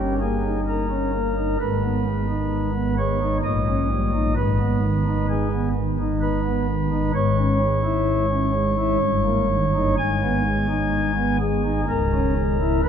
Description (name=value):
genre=classical, chorale-style piece for pipe organ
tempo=65 BPM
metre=3/4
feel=rubato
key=G# minor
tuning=A4 = 435 Hz
part: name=pipe organ, flutes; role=solo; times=0.0-12.9 s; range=C#1 to G#5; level=-19 LUFS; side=equal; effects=none
room=wet cathedral reverb, RT60 5.2 s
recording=minimal, uncompressed stereo recording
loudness=-19 LUFS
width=side -8 dB against mid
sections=0.0-12.9 A section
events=none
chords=0.0 D#7/G; 1.6 G#m; 3.4 D#7/A#; 4.4 G#m; 7.1 C#m/G#; 9.0 D#7/G; 10.0 G#m; 11.9 C#m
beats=0.67 | 1.60 2.52 3.44 | 4.37 5.29 6.22 | 7.15 8.08 9.01 | 9.99 10.94 11.89 | 12.84